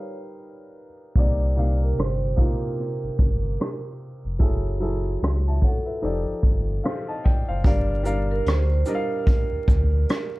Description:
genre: lo-fi hip hop.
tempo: 74 BPM.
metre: 4/4.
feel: swing 60% on 16ths.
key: G minor.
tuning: A4 = 439 Hz.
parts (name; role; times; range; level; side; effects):
vibraphone with medium mallets; melody; 0.0-10.3 s; A4 to D5; -31 LUFS; right 2 dB; low-pass filter, tape echo.
warm upright piano; accompaniment; 0.0-10.4 s; C3 to A5; -30 LUFS; equal; cassette tape, low-pass filter.
sub bass with octave; bass; 1.2-10.1 s; F1 to D2; -23 LUFS; equal; none.
vintage brush drum kit; drums; 1.2-10.3 s; hi-hat, kick drum, rim click, shaker; -22 LUFS; equal; none.
room: little or no reverb.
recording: dark, warm production, vinyl crackle, low-pass filter.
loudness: -20 LUFS.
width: side -20 dB against mid.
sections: 0.0-7.6 A section; 7.6-10.4 B section.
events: filter sweep 0.0-7.6.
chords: 0.0 G7alt; 1.2 Cm9; 4.4 F#m9; 6.0 F13; 7.6 Gm7.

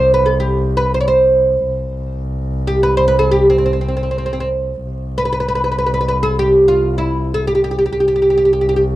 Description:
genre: Persian modal ensemble.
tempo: free time.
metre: none.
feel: none.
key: C dastgah chahargah.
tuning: A4 = 441 Hz.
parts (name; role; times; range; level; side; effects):
oud; melody; 0.0-8.8 s; C4 to Db5+45c; -14 LUFS; right 1 dB; none.
warm double bass; drone; 0.0-9.0 s; C2; -20 LUFS; equal; stereo widening.
room: studio reverb.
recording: dry, close 1970s-style studio recording.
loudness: -13 LUFS.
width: side -15 dB against mid.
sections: 0.0-4.8 A section; 4.8-9.0 A section.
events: none.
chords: none.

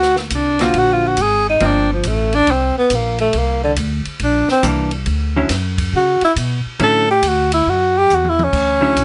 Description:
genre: jazz, small-group swing and bop.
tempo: 139 BPM.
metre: 4/4.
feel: swing 66% on 8ths.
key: unclear.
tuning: A4 = 439 Hz.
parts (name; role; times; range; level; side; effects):
mellow tenor saxophone; melody; 0.0-9.0 s; D3 to A4; -17 LUFS; equal; none.
upright bass; bass; 0.0-9.0 s; G1 to C#3; -23 LUFS; equal; none.
compact cocktail drum kit; drums; 0.0-9.0 s; crash cymbal, hi-hat, kick drum, ride cymbal, snare drum, toms; -28 LUFS; equal; none.
vintage hollow-body jazz guitar; accompaniment; 0.6-1.9, 4.6-9.0 s; D3 to F#4; -21 LUFS; equal; none.
room: light reverb.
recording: nothing above 10.7 kHz.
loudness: -16 LUFS.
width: mono.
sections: 0.0-8.5 A section.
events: tenor saxophone solo 0.0-9.0; drum fill 8.1-8.5.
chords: 0.0 Daug7; 1.6 Gm11; 3.3 C9; 5.1 Dmaj9.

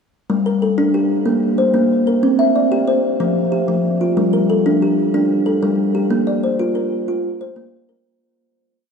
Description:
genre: southern african traditional.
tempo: 124 BPM (dotted quarters).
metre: 12/8.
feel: straight.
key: unclear.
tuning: A4 = 442 Hz.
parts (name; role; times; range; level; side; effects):
kalimba; solo; 0.3-8.2 s; F3 to E5; -15 LUFS; equal; none.
room: wet cathedral reverb, RT60 6.8 s.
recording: in a vast, echoing space.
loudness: -15 LUFS.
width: side -6 dB against mid.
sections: 0.3-8.1 A section.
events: fade-out 6.1-8.1.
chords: 0.3 Gm; 1.3 Bbsus2; 2.2 C; 3.2 F5; 4.2 Gm; 6.1 Bb.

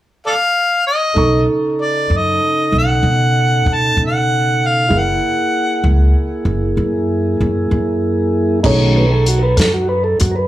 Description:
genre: slow blues.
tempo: 64 BPM (dotted quarters).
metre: 12/8.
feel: straight.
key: B mixolydian.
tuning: A4 = 442 Hz.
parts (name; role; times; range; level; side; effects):
clear harmonica; melody; 0.3-5.9 s; A4 to A5; -16 LUFS; left 1 dB; overdrive.
mellow tonewheel organ; sustained chords; 1.1-10.5 s; C#3 to B4; -18 LUFS; equal; slow rotary speaker.
dark upright piano; accompaniment; 1.2-10.5 s; D#4 to C#6; -23 LUFS; right 4 dB; none.
upright bass; bass; 1.2-10.5 s; F#1 to B2; -16 LUFS; equal; none.
warm soul drum kit; drums; 8.6-10.3 s; crash cymbal, hi-hat, kick drum, snare drum; -19 LUFS; left 1 dB; none.
room: light reverb.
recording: small room ambience.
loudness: -13 LUFS.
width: side -14 dB against mid.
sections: 0.0-1.2 A section; 1.2-8.6 B section; 8.6-10.5 C section.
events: tonewheel organ solo 8.6-10.5.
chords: 0.0 N.C.; 1.2 B7; 4.9 F#7; 8.6 B13.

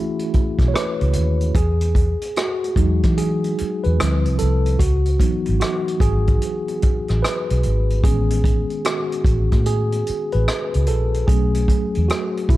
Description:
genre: R&B, neo-soul.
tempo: 74 BPM.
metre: 4/4.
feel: swing 63% on 16ths.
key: E major.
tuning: A4 = 441 Hz.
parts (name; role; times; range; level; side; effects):
mellow tine electric piano; accompaniment; 0.0-12.6 s; D#3 to C#5; -22 LUFS; right 1 dB; medium stereo tremolo.
unplugged drum kit; drums; 0.2-12.6 s; hi-hat, kick drum, rim click; -21 LUFS; equal; none.
vintage muted fingered electric bass; bass; 0.4-12.6 s; G#1 to E3; -19 LUFS; equal; none.
room: little or no reverb.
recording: dark, warm production.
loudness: -17 LUFS.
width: side -16 dB against mid.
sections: 0.0-12.6 A section.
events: tine electric piano solo 0.0-12.6.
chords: 0.0 B7sus4; 1.6 Emaj9; 4.0 Dm11; 4.8 C#m11 (rootless); 8.0 Amaj9#11; 11.3 B7sus4.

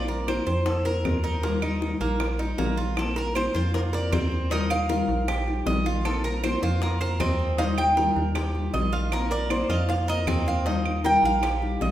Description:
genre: latin, Cuban son and guajira.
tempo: 156 BPM.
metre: 4/4.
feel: straight.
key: unclear.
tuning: A4 = 443 Hz.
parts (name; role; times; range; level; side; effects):
Cuban tres; melody; 0.0-11.9 s; A4 to G5; -28 LUFS; equal; none.
nylon-string guitar; accompaniment; 0.0-11.9 s; Eb3 to F4; -31 LUFS; left 3 dB; none.
Cuban tres; arpeggios; 0.0-11.9 s; Bb3 to Eb5; -30 LUFS; right 3 dB; none.
metallic FM bass; bass; 0.0-11.9 s; Bb1 to F2; -27 LUFS; equal; none.
bongos; percussion; 0.3-11.9 s; none; -32 LUFS; left 3 dB; none.
claves; percussion; 0.3-11.6 s; none; -37 LUFS; right 4 dB; none.
room: wet recital hall reverb, RT60 1.5 s.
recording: recorded in a church or concert hall.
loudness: -22 LUFS.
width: side -12 dB against mid.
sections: 0.0-3.0 A section; 3.0-11.9 B section.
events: none.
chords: 0.0 Bbsus2; 1.4 Ebadd9; 3.0 Bbsus2; 4.5 Ebadd9; 6.0 Bbsus2; 7.6 Ebadd9; 9.1 Bbsus2; 10.7 Ebadd9.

